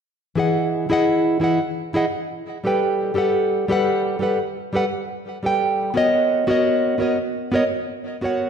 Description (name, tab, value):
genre	chillout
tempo	86 BPM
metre	4/4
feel	swing 53% on 16ths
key	unclear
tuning	A4 = 440 Hz
part	nylon-string guitar	accompaniment	0.4-8.5 s	E3 to G5	-18 LUFS	equal	auto-pan, digital delay
room	wet recital hall reverb, RT60 1.7 s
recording	none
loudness	-18 LUFS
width	side -7 dB against mid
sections	0.4-8.5 A section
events	none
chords	0.4 Emaj9; 2.8 Gmaj9; 6.0 Bmaj9